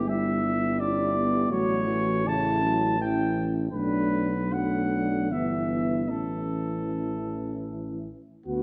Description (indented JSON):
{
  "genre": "classical, hymn-like piece for brass band",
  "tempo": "72-87 BPM",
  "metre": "3/4",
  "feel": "rubato",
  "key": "unclear",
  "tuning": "A4 = 440 Hz",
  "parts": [
    { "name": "warm flugelhorn", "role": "melody", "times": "0.0-8.6 s", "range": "G4 to A5", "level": "-32 LUFS", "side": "equal", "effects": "none" },
    { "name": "dark French horn section", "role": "second line", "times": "0.0-8.6 s", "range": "D4 to F#4", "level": "-34 LUFS", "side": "equal", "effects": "none" },
    { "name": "dark euphonium", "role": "accompaniment", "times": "0.0-8.6 s", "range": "A3 to D4", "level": "-34 LUFS", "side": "equal", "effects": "none" },
    { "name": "mellow trombone", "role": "accompaniment", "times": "0.0-8.6 s", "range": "C#3 to B3", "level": "-37 LUFS", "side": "equal", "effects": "none" },
    { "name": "mellow tuba", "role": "bass", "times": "0.0-8.6 s", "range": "G1 to D2", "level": "-33 LUFS", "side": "equal", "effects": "none" }
  ],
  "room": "wet concert hall reverb, RT60 1.8 s",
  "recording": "dark, warm production",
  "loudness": "-27 LUFS",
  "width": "mono",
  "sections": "0.0-8.5 A section",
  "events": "none",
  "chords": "0.0 Em/G; 1.5 A; 3.7 Bm7; 5.3 Em/G; 6.1 A"
}